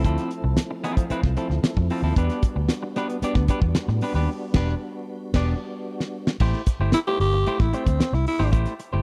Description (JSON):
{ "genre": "funk", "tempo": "113 BPM", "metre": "4/4", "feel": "straight", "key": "A dorian", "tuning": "A4 = 440 Hz", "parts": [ { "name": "electric guitar at the edge of break-up", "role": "accompaniment", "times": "0.0-9.0 s", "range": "F3 to D5", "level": "-32 LUFS", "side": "equal", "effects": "spring reverb" }, { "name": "mellow tonewheel organ", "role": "sustained chords", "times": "0.0-6.4 s", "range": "F3 to F#4", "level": "-35 LUFS", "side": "equal", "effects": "fast rotary speaker, chorus vibrato" }, { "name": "vintage muted fingered electric bass", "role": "bass", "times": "0.0-9.0 s", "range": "E1 to A2", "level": "-25 LUFS", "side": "equal", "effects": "none" }, { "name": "damped 70s drum kit", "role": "drums", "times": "0.0-8.9 s", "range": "crash cymbal, hi-hat, kick drum, snare drum", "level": "-25 LUFS", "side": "equal", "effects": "none" }, { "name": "growling alto saxophone", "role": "melody", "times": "6.9-8.5 s", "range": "C4 to G4", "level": "-26 LUFS", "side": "equal", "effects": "none" } ], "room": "little or no reverb", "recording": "dry, close 1970s-style studio recording", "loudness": "-23 LUFS", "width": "mono", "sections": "0.0-6.4 A section; 6.4-9.0 B section", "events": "band accent 4.3-6.4; drum fill 5.9-6.4; alto saxophone solo 6.4-9.0", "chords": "0.0 Dm9 (rootless); 2.2 Em7; 6.4 Am7" }